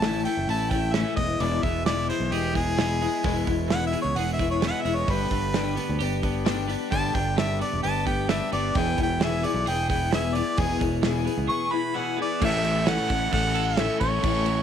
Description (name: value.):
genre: folk rock and heartland rock.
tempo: 131 BPM.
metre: 4/4.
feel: straight.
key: A major.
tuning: A4 = 440 Hz.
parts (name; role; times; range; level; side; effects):
clear harmonica; melody; 0.0-14.6 s; G4 to C#6; -28 LUFS; equal; none.
picked steel-string acoustic guitar; accompaniment; 0.0-14.6 s; E2 to A4; -28 LUFS; left 10 dB; none.
twelve-string electric guitar; riff; 0.0-14.6 s; E2 to A4; -33 LUFS; right 14 dB; lush chorus.
modern bright fingered electric bass; bass; 0.0-14.6 s; E1 to D2; -29 LUFS; equal; none.
natural country drum kit; drums; 0.0-14.6 s; crash cymbal, hi-hat, kick drum, snare drum; -29 LUFS; right 3 dB; none.
room: light reverb, small room ambience.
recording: 1960s-style stereo with parts hard left and right.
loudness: -22 LUFS.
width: side -8 dB against mid.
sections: 0.0-12.4 A section; 12.4-14.6 B section.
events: harmonica solo 0.0-12.4.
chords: 0.0 A; 1.2 E; 5.1 G; 8.8 E; 12.4 A.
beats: 0.03 0.49 0.95 | 1.41 1.87 2.33 2.79 | 3.25 3.71 4.17 4.62 | 5.08 5.54 6.00 6.46 | 6.92 7.38 7.84 8.30 | 8.76 9.21 9.67 10.13 | 10.59 11.04 11.50 11.96 | 12.41 12.87 13.32 13.78 | 14.23.